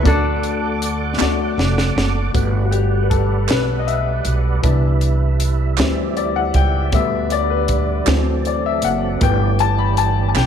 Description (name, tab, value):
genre	slow gospel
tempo	52 BPM (dotted quarters)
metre	6/8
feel	straight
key	G major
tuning	A4 = 440 Hz
part	lap resonator guitar	melody	0.0-1.9 s	D4 to A4	-24 LUFS	left 1 dB	tape echo
part	clear upright piano	accompaniment	0.0-10.5 s	D3 to B5	-21 LUFS	left 11 dB	none
part	tonewheel organ	sustained chords	0.0-10.5 s	E3 to D6	-26 LUFS	right 12 dB	slow rotary speaker, overdrive, chorus vibrato
part	upright bass	bass	0.0-10.5 s	F1 to D2	-19 LUFS	right 1 dB	none
part	crisp fusion drum kit	drums	0.1-10.5 s	hi-hat, kick drum, snare drum	-22 LUFS	right 1 dB	none
part	group handclap	percussion	1.2-10.5 s	none	-25 LUFS	right 17 dB	none
room	light reverb, small room ambience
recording	1960s-style stereo with parts hard left and right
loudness	-15 LUFS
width	side -8 dB against mid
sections	0.0-2.3 A section; 2.3-10.5 B section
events	drum fill 1.2-2.3; upright piano solo 2.3-10.5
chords	0.1 D; 2.3 Gmaj7; 4.6 Cmaj7; 5.8 D9sus4; 6.9 G/D; 8.1 D7; 9.2 G6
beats	| 0.06 1.20 | 2.35 3.49 | 4.64 5.78 | 6.93 8.07 | 9.22 10.37